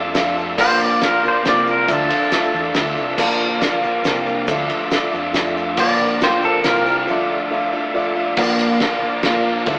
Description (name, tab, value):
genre	folk rock and heartland rock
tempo	139 BPM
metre	3/4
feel	straight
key	unclear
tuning	A4 = 440 Hz
part	picked twelve-string acoustic guitar	accompaniment	0.0-9.8 s	Bb2 to Bb4	-26 LUFS	equal	none
part	bright tonewheel organ	sustained chords	0.0-9.8 s	A4 to D6	-29 LUFS	equal	chorus vibrato, fast rotary speaker
part	crunchy overdriven guitar	riff	0.0-9.8 s	Bb2 to F4	-26 LUFS	equal	none
part	fingered electric bass	bass	0.0-9.8 s	Bb1 to Bb2	-32 LUFS	equal	none
part	mellow reed electric piano	accompaniment	0.1-9.8 s	F4 to A5	-27 LUFS	equal	fast tremolo
part	damped 70s drum kit	drums	0.1-9.8 s	crash cymbal, kick drum, ride cymbal, snare drum	-24 LUFS	equal	none
part	tube shaker	percussion	0.1-6.9 s	none	-45 LUFS	equal	none
part	pedal steel guitar	second line	0.6-2.7, 5.8-7.1 s	A4 to D5	-22 LUFS	equal	analog delay
room	wet studio reverb, RT60 0.6 s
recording	rough rehearsal-room recording, AM radio sound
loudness	-18 LUFS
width	mono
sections	0.0-8.4 A section; 8.4-9.8 A section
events	reed electric piano fill 0.0-0.6; break 7.1-8.4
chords	0.0 Dmadd9; 0.6 Bb; 1.9 Dmadd9; 3.2 Bb; 4.5 Dmadd9; 5.8 Bb; 7.1 Dmadd9; 8.4 Bb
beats	0.15 | 0.58 1.02 1.45 | 1.88 2.32 2.75 | 3.18 3.62 4.05 | 4.48 4.91 5.34 | 5.78 6.21 6.64 | 7.08 7.51 7.94 | 8.38 8.81 9.24 | 9.68